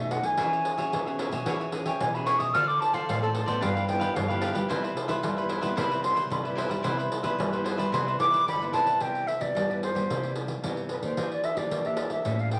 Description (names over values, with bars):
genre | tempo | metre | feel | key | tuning
samba and choro | 111 BPM | 4/4 | straight | C major | A4 = 440 Hz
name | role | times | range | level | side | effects
mellow silver concert flute | melody | 0.0-12.6 s | A4 to F6 | -29 LUFS | equal | none
nylon-string guitar | accompaniment | 0.0-12.6 s | F#2 to A4 | -36 LUFS | equal | none
nylon-string guitar | bass | 0.0-12.6 s | G2 to Bb3 | -37 LUFS | equal | none
pandeiro | percussion | 0.1-12.6 s | none | -36 LUFS | equal | none
cavaquinho | accompaniment | 0.4-9.0 s | D4 to F5 | -34 LUFS | equal | none
room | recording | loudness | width
moderate large studio reverb, RT60 0.9 s | vinyl crackle | -28 LUFS | mono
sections
0.0-9.0 A section; 9.0-12.6 B section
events
flute solo 0.0-9.0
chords
0.4 E69; 2.5 Dm7; 3.6 G6; 4.7 Cmaj7; 11.2 Em7b5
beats
| 0.39 0.92 1.46 2.00 | 2.54 3.08 3.62 4.16 | 4.70 5.24 5.78 6.32 | 6.86 7.39 7.93 8.47 | 9.01 9.55 10.09 10.63 | 11.17 11.71 12.25